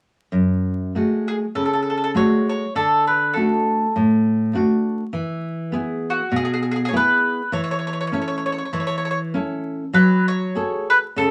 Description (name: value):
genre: italian folk, Italian serenade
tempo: 100 BPM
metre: 4/4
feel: swing 54% on 8ths, rubato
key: F# minor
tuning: A4 = 440 Hz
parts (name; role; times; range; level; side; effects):
- nylon-string guitar; accompaniment; 0.3-11.3 s; F#2 to A4; -23 LUFS; equal; none
- mandolin; melody; 1.3-11.3 s; F#4 to C#5; -23 LUFS; equal; none
room: wet small room reverb, RT60 0.5 s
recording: vinyl crackle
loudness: -21 LUFS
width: mono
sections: 0.3-9.9 A section; 9.9-11.3 B section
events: none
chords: 0.3 F#madd9; 2.8 D; 5.1 E; 7.5 A/E; 9.9 F#madd9